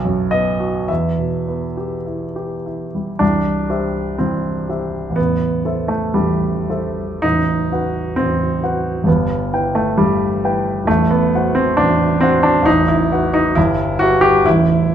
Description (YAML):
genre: classical, romantic character piece for solo piano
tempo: 49-69 BPM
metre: 2/4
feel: rubato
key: E minor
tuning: A4 = 441 Hz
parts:
  - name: warm grand piano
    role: solo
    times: 0.0-14.9 s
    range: A0 to G5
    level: -15 LUFS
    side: equal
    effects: none
room: moderate large studio reverb, RT60 1.2 s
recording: minimal, uncompressed stereo recording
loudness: -15 LUFS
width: side -9 dB against mid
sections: 0.0-3.2 A section; 3.2-14.9 B section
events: none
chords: 0.0 B7; 0.9 Em; 3.2 C; 5.2 Am7; 7.2 B7/A; 9.1 Em/G; 10.9 F#dim/A; 12.7 B5/A; 13.6 Em/G